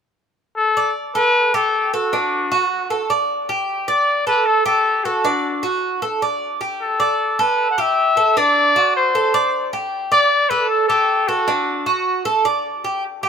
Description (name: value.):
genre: latin.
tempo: 154 BPM.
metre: 4/4.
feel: straight.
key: G major.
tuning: A4 = 437 Hz.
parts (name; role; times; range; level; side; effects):
breathy trumpet; melody; 0.6-13.3 s; F#4 to F#5; -17 LUFS; left 2 dB; none.
Cuban tres; arpeggios; 0.8-13.3 s; D4 to D5; -19 LUFS; right 3 dB; none.
room: moderate plate reverb, RT60 3.6 s.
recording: minimal, uncompressed stereo recording.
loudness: -16 LUFS.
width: side -7 dB against mid.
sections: 0.6-13.0 A section.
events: none.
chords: 0.6 Gadd9; 2.1 D; 3.7 Gsus2; 5.2 D; 6.8 Gsus2; 8.4 D7; 9.9 Gsus2; 11.5 D.